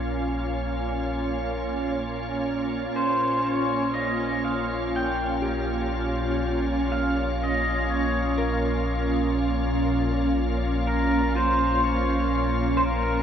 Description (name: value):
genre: ambient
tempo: 60 BPM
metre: 4/4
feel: straight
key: Bb dorian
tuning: A4 = 441 Hz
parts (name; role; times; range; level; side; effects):
- soft additive organ-like pad; sustained chords; 0.0-13.2 s; Bb2 to F4; -25 LUFS; right 1 dB; ensemble chorus, built-in reverb, shimmer reverb
- warm sub bass; bass; 0.0-13.2 s; Bb1; -30 LUFS; equal; none
- pedal steel guitar; melody; 3.0-13.2 s; Bb4 to G5; -27 LUFS; left 1 dB; shimmer reverb, tape echo
- mellow electric guitar; arpeggios; 5.4-13.2 s; F4 to Bb4; -38 LUFS; equal; tremolo, tape echo
room: wet cathedral reverb, RT60 6.2 s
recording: in a vast, echoing space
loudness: -22 LUFS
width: side -8 dB against mid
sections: 0.0-13.2 A section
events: fade-out on clean electric guitar 0.0-13.2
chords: 0.0 Bbm